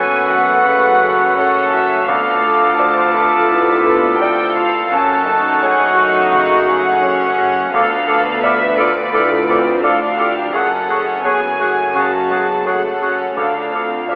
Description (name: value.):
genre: cinematic, emotional film score for orchestra.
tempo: 85 BPM.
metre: 4/4.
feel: rubato.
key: unclear.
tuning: A4 = 440 Hz.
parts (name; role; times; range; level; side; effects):
warm studio violin section; melody; 0.0-14.2 s; D5 to A5; -22 LUFS; equal; none.
clear clarinet; second line; 0.0-14.2 s; G#4 to A4; -24 LUFS; equal; none.
mellow cor anglais; second line; 0.0-14.2 s; F5 to F#5; -22 LUFS; equal; none.
silver concert flute; second line; 0.0-14.2 s; C#6 to D6; -23 LUFS; equal; none.
warm symphonic violin section; second line; 0.0-14.2 s; F#4 to C5; -25 LUFS; equal; none.
dark symphonic viola section; accompaniment; 0.0-14.2 s; A3 to Eb4; -27 LUFS; equal; none.
warm concert grand piano; accompaniment; 0.0-14.2 s; D2 to D5; -24 LUFS; equal; none.
mellow French horn section; sustained chords; 0.0-14.2 s; C3 to F#4; -26 LUFS; equal; none.
dark symphonic double bass section; bass; 0.0-14.2 s; F#1 to D2; -34 LUFS; equal; none.
rich symphonic cello section; bass; 0.0-14.2 s; D2 to F#2; -30 LUFS; equal; none.
room: wet concert hall reverb, RT60 2.4 s.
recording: telephone sound.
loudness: -15 LUFS.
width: mono.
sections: 0.0-14.2 A section.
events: none.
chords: 0.0 F#m; 2.1 Dm7; 4.9 F#madd9; 7.7 Dm7; 10.5 F#madd9; 13.4 Dm7.